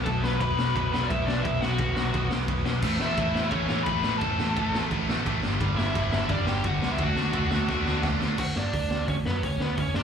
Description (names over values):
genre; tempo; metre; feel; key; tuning
punk rock; 173 BPM; 4/4; straight; D major; A4 = 440 Hz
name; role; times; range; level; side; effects
biting lead guitar; melody; 0.0-10.0 s; B3 to B5; -30 LUFS; left 1 dB; overdrive, slapback echo
overdriven electric guitar; riff; 0.0-8.4 s; G2 to D4; -33 LUFS; right 11 dB; slapback echo
sludgy distorted guitar; riff; 0.0-8.4 s; G2 to D4; -32 LUFS; left 12 dB; overdrive, slapback echo
overdriven picked electric bass; bass; 0.1-10.0 s; G1 to G2; -29 LUFS; right 1 dB; none
raw garage drum kit; drums; 0.1-10.0 s; crash cymbal, hi-hat, kick drum, ride cymbal, snare drum; -29 LUFS; equal; none
tight distorted guitar; riff; 2.8-8.4 s; G2 to D4; -32 LUFS; equal; distortion
room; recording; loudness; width
little or no reverb; live gig heard through the venue's PA, club reverb; -24 LUFS; side -7 dB against mid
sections
0.0-8.4 A section; 8.4-10.0 B section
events
drum fill 7.7-8.4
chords
0.0 B5; 2.8 A; 5.4 G5; 7.0 D; 8.4 N.C.